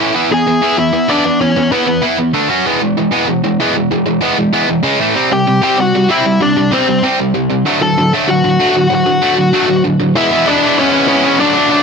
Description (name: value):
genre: punk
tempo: 192 BPM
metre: 4/4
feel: straight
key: E mixolydian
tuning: A4 = 439 Hz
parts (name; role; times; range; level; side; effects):
- distorted electric guitar; riff; 0.0-11.8 s; A2 to F#4; -12 LUFS; right 1 dB; overdrive
- bluesy overdriven lead guitar; melody; 0.3-2.0, 5.3-11.8 s; B3 to A5; -14 LUFS; left 3 dB; distortion, tape echo
room: light reverb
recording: none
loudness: -10 LUFS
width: side -5 dB against mid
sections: 0.1-10.2 A section; 10.2-11.8 B section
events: none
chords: 0.1 E; 2.3 D5; 2.5 F#5; 2.7 E; 4.8 C#5; 5.0 A5; 5.2 C; 7.7 D; 10.2 E